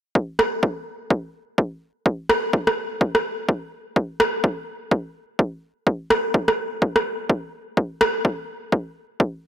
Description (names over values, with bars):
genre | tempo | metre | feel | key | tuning
piano house | 126 BPM | 4/4 | swing 58% on 16ths | none | none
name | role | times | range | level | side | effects
electronic kick drum | drums | 0.2-9.3 s | none | -20 LUFS | equal | overdrive, high-pass filter on kick
electronic rim click | drums | 0.4-8.1 s | none | -21 LUFS | equal | overdrive
room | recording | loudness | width
moderate plate reverb, RT60 2.0 s, digital ambience | none | -21 LUFS | side -10 dB against mid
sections
0.2-9.5 A section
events
none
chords
none